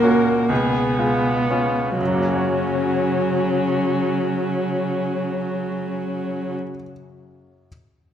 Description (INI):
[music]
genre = classical, slow romantic movement for piano quartet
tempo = 42 BPM (dotted quarters)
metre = 6/8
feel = rubato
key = F# major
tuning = A4 = 440 Hz
[part]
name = dark violin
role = melody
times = 0.0-6.5 s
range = C#4 to A#4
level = -25 LUFS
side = left 7 dB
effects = none
[part]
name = dark cello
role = second line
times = 0.0-6.6 s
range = A#2 to C#3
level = -28 LUFS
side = right 4 dB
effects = none
[part]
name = bright baby grand piano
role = accompaniment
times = 0.0-7.7 s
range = C#2 to C#5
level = -25 LUFS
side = left 1 dB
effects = none
[part]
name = warm viola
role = accompaniment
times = 0.0-6.5 s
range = F#3 to B3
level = -22 LUFS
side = right 3 dB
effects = none
[sound]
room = wet recital hall reverb, RT60 1.8 s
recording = none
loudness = -19 LUFS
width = side -9 dB against mid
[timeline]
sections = 0.0-2.0 A section; 2.0-7.7 B section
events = slowing down 0.0-2.0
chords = 0.5 C#7; 2.0 F#